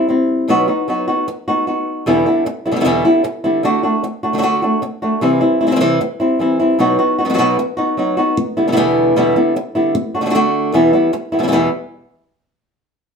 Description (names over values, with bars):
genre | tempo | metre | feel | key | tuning
flamenco | 152 BPM | 4/4 | straight | E minor | A4 = 440 Hz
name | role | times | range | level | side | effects
flamenco guitar | melody | 0.0-11.7 s | E2 to F#4 | -13 LUFS | equal | none
room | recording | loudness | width
wet studio reverb, RT60 0.8 s | none | -13 LUFS | side -6 dB against mid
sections
0.0-11.5 A section; 11.5-13.1 B section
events
none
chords
0.5 B; 2.1 Em7; 3.6 D; 5.2 C; 6.8 B; 8.4 Em7; 9.9 D; 10.7 Em; 11.5 N.C.